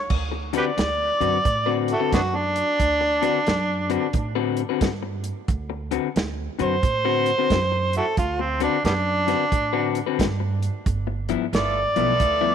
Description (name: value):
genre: electric blues shuffle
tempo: 89 BPM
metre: 4/4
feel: swing 64% on 8ths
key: D mixolydian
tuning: A4 = 440 Hz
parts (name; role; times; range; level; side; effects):
- overdriven harmonica; melody; 0.0-12.5 s; G3 to D5; -22 LUFS; right 1 dB; none
- upright bass; bass; 0.1-12.5 s; G1 to A2; -28 LUFS; right 2 dB; none
- warm soul drum kit; drums; 0.1-12.4 s; crash cymbal, hi-hat, kick drum, snare drum; -26 LUFS; right 2 dB; none
- electric guitar through a small old amp; riff; 0.3-12.5 s; G2 to B4; -26 LUFS; left 14 dB; none
- bright horn section; stabs; 11.5-12.5 s; A3 to A4; -29 LUFS; right 13 dB; none
room: moderate echo chamber reverb, RT60 2.5 s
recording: 1960s-style stereo with parts hard left and right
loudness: -20 LUFS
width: side -8 dB against mid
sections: 0.1-12.5 A section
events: harmonica solo 0.1-12.5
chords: 0.1 D6; 10.9 G13